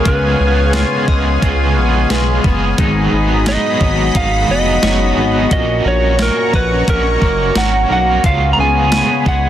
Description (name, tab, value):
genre	dream pop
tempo	88 BPM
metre	4/4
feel	straight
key	unclear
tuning	A4 = 440 Hz
part	electric slide guitar	melody	0.0-9.5 s	A#4 to A#5	-18 LUFS	right 2 dB	digital delay
part	crunchy overdriven guitar	accompaniment	0.0-9.5 s	G#2 to A#4	-22 LUFS	right 4 dB	tremolo, lush chorus
part	lush unison pad	sustained chords	0.0-9.5 s	F#4 to C#6	-21 LUFS	left 1 dB	chorus
part	twangy electric guitar	arpeggios	0.0-9.5 s	G#2 to E#4	-19 LUFS	left 4 dB	lush chorus, digital delay
part	chorused synth bass	bass	0.1-9.5 s	E#1 to C#2	-17 LUFS	equal	none
part	crisp 8-bit digital drum machine	drums	0.1-9.4 s	hi-hat, kick drum, snare drum	-16 LUFS	equal	none
part	glassy synth bell	texture	1.1-7.7 s	B4 to D#5	-30 LUFS	right 2 dB	none
room	light reverb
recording	dense, heavily limited modern master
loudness	-11 LUFS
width	side -11 dB against mid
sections	0.0-9.5 A section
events	none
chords	0.0 C#7; 2.8 G#m7; 5.5 F#/A#; 8.2 C#7